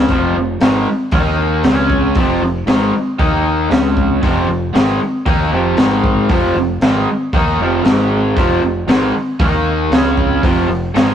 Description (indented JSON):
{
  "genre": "garage rock duo or trio",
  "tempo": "116 BPM",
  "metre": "4/4",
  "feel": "straight",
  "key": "F minor",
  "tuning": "A4 = 440 Hz",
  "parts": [
    { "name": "raw garage guitar", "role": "riff", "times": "0.0-11.1 s", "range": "F2 to Eb4", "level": "-15 LUFS", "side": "equal", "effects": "overdrive" },
    { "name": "growling picked electric bass", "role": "bass", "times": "0.0-11.1 s", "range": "F1 to Eb2", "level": "-21 LUFS", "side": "equal", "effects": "overdrive, tube saturation" },
    { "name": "crunchy breakbeat drum kit", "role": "drums", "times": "0.1-11.1 s", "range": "hi-hat, kick drum, snare drum", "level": "-16 LUFS", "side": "equal", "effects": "none" }
  ],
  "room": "light reverb",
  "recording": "rough rehearsal-room recording",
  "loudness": "-12 LUFS",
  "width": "side -9 dB against mid",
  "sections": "0.1-11.1 A section",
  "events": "none",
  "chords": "0.1 Fm; 1.1 Eb5; 1.6 Db5; 2.2 Fm; 3.2 Eb5; 3.7 Db5; 4.2 Fm; 5.8 Ab5; 6.3 Fm; 7.8 Ab5; 8.4 Fm; 9.4 Eb5; 9.9 Db5; 10.4 Fm"
}